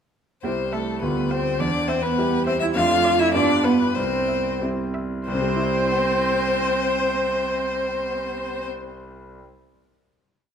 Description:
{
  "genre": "quick classical-period movement for piano quartet",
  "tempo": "89-105 BPM",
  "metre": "2/4",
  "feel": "straight",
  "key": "C major",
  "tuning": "A4 = 440 Hz",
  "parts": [
    { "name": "clear violin", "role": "melody", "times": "0.4-8.7 s", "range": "A4 to F5", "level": "-24 LUFS", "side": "left 6 dB", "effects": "none" },
    { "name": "dark cello", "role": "second line", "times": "0.4-8.7 s", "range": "A3 to F4", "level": "-24 LUFS", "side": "right 5 dB", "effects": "none" },
    { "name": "bright concert grand piano", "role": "accompaniment", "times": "0.4-9.5 s", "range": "C2 to C5", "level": "-26 LUFS", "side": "equal", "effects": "none" },
    { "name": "rich viola", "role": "accompaniment", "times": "0.7-8.7 s", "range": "C5 to F5", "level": "-29 LUFS", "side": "right 2 dB", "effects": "none" }
  ],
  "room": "wet recital hall reverb, RT60 1.6 s",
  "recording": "none",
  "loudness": "-20 LUFS",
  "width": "side -8 dB against mid",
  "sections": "0.4-5.3 A section; 5.3-7.9 final chord",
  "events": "slowing down 2.2-5.3",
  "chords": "0.4 C; 1.0 G7/D; 1.6 Em7; 2.7 Dm/F; 3.3 G7; 4.0 C"
}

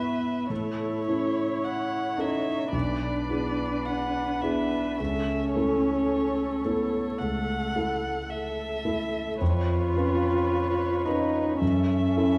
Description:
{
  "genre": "classical, slow romantic movement for piano quintet",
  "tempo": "54 BPM",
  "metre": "4/4",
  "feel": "rubato",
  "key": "unclear",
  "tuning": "A4 = 439 Hz",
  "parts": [
    { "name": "muted violin", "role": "melody", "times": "0.0-12.4 s", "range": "C#5 to F#5", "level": "-36 LUFS", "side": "equal", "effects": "none" },
    { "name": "muted cello", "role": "second line", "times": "0.0-12.4 s", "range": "A3 to E#4", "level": "-30 LUFS", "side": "equal", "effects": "none" },
    { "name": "dark concert grand piano", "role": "accompaniment", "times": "0.0-12.4 s", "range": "B1 to B4", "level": "-31 LUFS", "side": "equal", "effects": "none" },
    { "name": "muted viola", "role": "accompaniment", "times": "0.0-12.4 s", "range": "A4 to C#5", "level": "-38 LUFS", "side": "equal", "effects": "none" }
  ],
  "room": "wet recital hall reverb, RT60 1.7 s",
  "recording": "recorded in a church or concert hall, vinyl crackle",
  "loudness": "-27 LUFS",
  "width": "mono",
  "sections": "0.0-12.4 A section",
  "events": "none",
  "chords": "0.0 E/G#; 0.5 A; 2.7 E7/B; 5.0 A/C#; 9.4 C#7/E#; 11.6 F#m7"
}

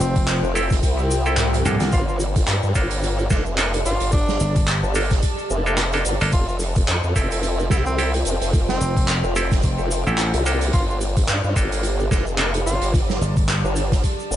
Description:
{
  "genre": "glitch hop",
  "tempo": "109 BPM",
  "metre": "4/4",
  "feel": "swing 57% on 16ths",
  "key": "G dorian",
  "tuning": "A4 = 443 Hz",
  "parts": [
    { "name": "breathy tenor saxophone", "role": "melody", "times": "0.0-12.9 s", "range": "C4 to F4", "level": "-30 LUFS", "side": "equal", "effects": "tape echo" },
    { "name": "gritty slap bass", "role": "bass", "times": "0.0-13.6 s", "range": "F1 to C2", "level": "-22 LUFS", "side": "equal", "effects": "overdrive" },
    { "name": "oversized low-tuned drum kit", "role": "drums", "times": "0.0-14.2 s", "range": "handclaps, hi-hat, snare drum, toms", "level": "-26 LUFS", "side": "right 2 dB", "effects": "none" },
    { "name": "cabasa", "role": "percussion", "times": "0.0-14.4 s", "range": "none", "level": "-33 LUFS", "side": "left 2 dB", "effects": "none" },
    { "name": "granular cloud pad", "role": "texture", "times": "0.0-14.4 s", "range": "F4 to A5", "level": "-29 LUFS", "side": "equal", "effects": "built-in reverb, sidechain pumping" },
    { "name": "electronic kick drum", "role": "drums", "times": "0.2-14.2 s", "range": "none", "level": "-19 LUFS", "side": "equal", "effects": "none" },
    { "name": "formant-sweep wobble bass", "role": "bass", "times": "0.4-14.4 s", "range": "F1 to G2", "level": "-22 LUFS", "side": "equal", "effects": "chorus, tube saturation" },
    { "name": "bright clav", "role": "stabs", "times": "0.6-12.5 s", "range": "Bb3 to A4", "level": "-27 LUFS", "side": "right 2 dB", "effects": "vintage 12-bit sampler grit, sidechain pumping, tape echo" },
    { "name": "swell", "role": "sound effects", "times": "1.2-1.9 s", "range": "none", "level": "-34 LUFS", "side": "equal", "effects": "none" }
  ],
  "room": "small room ambience",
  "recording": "nothing above 10.5 kHz",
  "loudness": "-18 LUFS",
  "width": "side -12 dB against mid",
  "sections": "0.0-14.4 A section",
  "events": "swell 1.2-1.9; drum fill 1.4-1.9",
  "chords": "0.0 Fmaj9; 1.9 Gm9; 6.3 Fmaj9; 10.7 Gm9"
}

